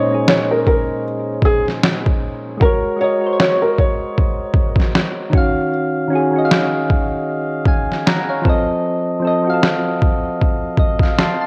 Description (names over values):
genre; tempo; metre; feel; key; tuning
lo-fi hip hop; 77 BPM; 4/4; swing 58% on 16ths; Bb minor; A4 = 440 Hz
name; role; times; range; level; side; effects
felt-muted upright piano; melody; 0.0-5.7 s; Ab4 to Db5; -21 LUFS; equal; low-pass filter, cassette tape
soft electric-piano-like synth keys; accompaniment; 0.0-11.5 s; Bb2 to C6; -21 LUFS; equal; chorus, cassette tape, low-pass filter
trip hop sampler-style drum kit; drums; 0.3-11.4 s; kick drum, snare drum; -18 LUFS; equal; cassette tape
room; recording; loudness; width
moderate spring reverb, RT60 2.4 s; home recording on cassette; -17 LUFS; mono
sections
0.0-11.5 A section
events
break 0.0-11.5; synth keys fill 10.4-11.5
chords
0.0 Bbm11; 2.6 Ab9sus4; 5.3 Ebm9; 8.5 F7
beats
0.27 1.05 1.83 | 2.61 3.39 4.17 4.94 | 5.72 6.50 7.28 8.06 | 8.84 9.62 10.40 11.18